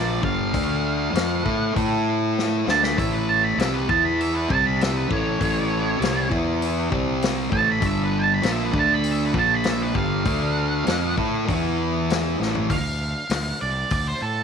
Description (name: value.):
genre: blues rock power trio and southern rock.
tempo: 99 BPM.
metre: 4/4.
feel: straight.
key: unclear.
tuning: A4 = 440 Hz.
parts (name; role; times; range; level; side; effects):
octave-fuzz lead guitar; melody; 0.0-14.4 s; A4 to B5; -24 LUFS; right 4 dB; distortion.
thick fuzz guitar; riff; 0.0-12.7 s; G2 to A4; -23 LUFS; equal; distortion.
fuzz fingered electric bass; bass; 0.0-14.4 s; G1 to A2; -27 LUFS; equal; overdrive.
vintage drum kit; drums; 0.2-14.1 s; hi-hat, kick drum, snare drum, toms; -27 LUFS; left 3 dB; none.
room: light reverb, small room ambience.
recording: 1960s-style stereo.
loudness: -20 LUFS.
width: side -6 dB against mid.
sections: 0.0-12.7 A section; 12.7-14.4 B section.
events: drum fill 2.4-3.0, 12.4-12.7; lead electric guitar solo 12.7-14.4.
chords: 0.2 G5; 0.5 Dm7; 1.8 A5; 2.7 D5; 3.0 Am7; 3.9 E5; 4.5 C5; 5.1 A7#9; 6.3 E5; 6.9 C5; 7.5 A5; 7.8 Gm7; 8.7 D5; 9.3 Bb5; 10.0 G5; 10.3 Dm7; 11.5 E5; 12.4 A5; 12.7 Dm7.